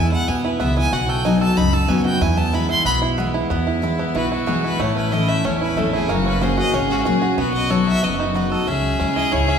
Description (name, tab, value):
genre	bluegrass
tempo	186 BPM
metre	4/4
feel	straight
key	E major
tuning	A4 = 439 Hz
part	clear fiddle	melody	0.0-9.6 s	E4 to C6	-24 LUFS	equal	none
part	picked steel-string acoustic guitar	accompaniment	0.0-9.6 s	E2 to F#4	-21 LUFS	left 2 dB	none
part	bluegrass banjo	arpeggios	0.0-9.6 s	A3 to A4	-24 LUFS	right 4 dB	none
part	upright bass	bass	0.0-9.6 s	F#1 to E2	-24 LUFS	equal	none
part	clear fiddle	second line	3.5-9.6 s	E4 to G#4	-25 LUFS	left 4 dB	none
room	wet recital hall reverb, RT60 1.8 s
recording	recorded in a church or concert hall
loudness	-17 LUFS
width	side -7 dB against mid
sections	0.0-3.5 A section; 3.5-9.6 B section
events	fiddle solo 0.0-3.5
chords	0.0 E; 0.9 B; 2.2 E; 4.8 A; 6.1 F#; 7.4 B; 8.7 C#m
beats	0.28 0.60 | 0.93 1.25 1.57 1.90 | 2.22 2.54 2.86 3.19 | 3.51 3.83 4.15 4.48 | 4.80 5.12 5.45 5.77 | 6.09 6.42 6.74 7.06 | 7.38 7.71 8.03 8.35 | 8.68 9.00 9.32